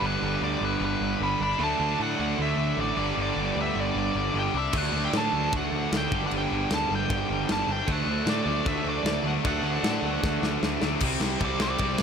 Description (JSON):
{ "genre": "punk rock", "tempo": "153 BPM", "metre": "4/4", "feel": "straight", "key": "G major", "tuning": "A4 = 440 Hz", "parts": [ { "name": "nasal lead guitar with a parked wah", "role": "melody", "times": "0.0-12.0 s", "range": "B4 to B5", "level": "-31 LUFS", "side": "right 1 dB", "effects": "overdrive, tape echo" }, { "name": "cranked stack guitar", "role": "riff", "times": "0.0-12.0 s", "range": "G2 to D4", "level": "-31 LUFS", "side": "right 14 dB", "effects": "overdrive" }, { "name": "tight distorted guitar", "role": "riff", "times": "0.0-12.0 s", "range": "G2 to E4", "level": "-31 LUFS", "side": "left 14 dB", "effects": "distortion" }, { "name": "tight distorted guitar", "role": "riff", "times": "0.0-12.0 s", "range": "G2 to D4", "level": "-34 LUFS", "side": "left 1 dB", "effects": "distortion" }, { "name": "fuzz picked electric bass", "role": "bass", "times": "0.0-12.0 s", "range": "G1 to A2", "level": "-31 LUFS", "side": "left 1 dB", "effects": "overdrive" }, { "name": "tight metal drum kit", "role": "drums", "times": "4.7-12.0 s", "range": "crash cymbal, kick drum, ride cymbal, snare drum", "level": "-30 LUFS", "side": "left 1 dB", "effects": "none" } ], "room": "little or no reverb", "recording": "none", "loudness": "-24 LUFS", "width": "side -7 dB against mid", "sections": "0.0-11.0 A section; 11.0-12.0 B section", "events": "half time 0.0-11.0; drum fill 10.2-11.0; lead electric guitar solo 11.0-12.0", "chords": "0.0 G; 1.6 D; 3.0 G; 4.7 D; 6.1 G; 7.9 D; 11.0 C" }